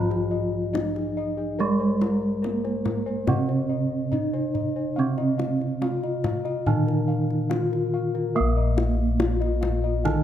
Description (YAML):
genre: Javanese gamelan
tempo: 71 BPM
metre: 4/4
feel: straight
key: Bb slendro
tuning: A4 = 440 Hz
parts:
  - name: gamelan-type bronze metallophone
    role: melody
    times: 0.0-10.2 s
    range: Ab3-40c to F4+20c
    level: -27 LUFS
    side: equal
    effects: none
  - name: gamelan-type bronze metallophone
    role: accompaniment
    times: 0.0-10.2 s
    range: C3+40c to Bb3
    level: -28 LUFS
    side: right 4 dB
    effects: none
  - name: gamelan-type bossed gongs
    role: arpeggios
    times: 0.0-10.2 s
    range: Ab4-40c to F5+20c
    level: -32 LUFS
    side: left 5 dB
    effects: none
  - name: gamelan-type bossed gongs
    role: bass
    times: 0.0-10.2 s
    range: Bb1 to Bb4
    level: -28 LUFS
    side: left 1 dB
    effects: none
  - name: kendang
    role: percussion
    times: 0.1-10.2 s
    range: none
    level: -30 LUFS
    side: left 3 dB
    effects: none
room: light reverb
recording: close, detailed microphones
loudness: -22 LUFS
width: side -10 dB against mid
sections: 0.0-10.2 A section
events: none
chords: none